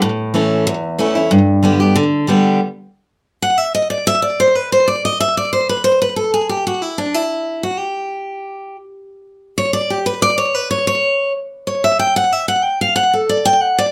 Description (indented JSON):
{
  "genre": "bluegrass",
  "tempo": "185 BPM",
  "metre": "4/4",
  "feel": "straight",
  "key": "G major",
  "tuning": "A4 = 440 Hz",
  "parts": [
    { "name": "picked steel-string acoustic guitar", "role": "solo", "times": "0.0-13.9 s", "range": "E2 to G5", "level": "-16 LUFS", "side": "equal", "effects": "slapback echo" }
  ],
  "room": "wet small room reverb, RT60 0.5 s",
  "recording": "rough home demo mix",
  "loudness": "-16 LUFS",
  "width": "mono",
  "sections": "0.0-2.6 A section; 2.6-13.9 B section",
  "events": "steel-string acoustic guitar solo 2.6-13.9",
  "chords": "0.0 A; 1.3 G; 2.6 N.C."
}